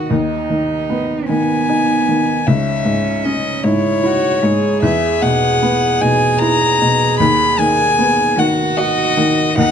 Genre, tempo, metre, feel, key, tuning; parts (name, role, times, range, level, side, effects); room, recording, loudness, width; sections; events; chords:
neoclassical piano and strings; 51 BPM (dotted quarters); 6/8; rubato; A4 = 441 Hz
warm violin; melody; 0.0-9.7 s; C#5 to B5; -16 LUFS; left 3 dB
warm cello; second line; 0.0-9.7 s; B3 to G#4; -20 LUFS; right 6 dB
felt-muted upright piano; accompaniment; 0.0-9.7 s; C#2 to F#4; -17 LUFS; left 1 dB
light reverb; nothing above 10.3 kHz; -13 LUFS; side -8 dB against mid
0.0-9.7 A section
0.1 G#m/D#; 2.5 C#m; 4.8 E; 7.2 B/D#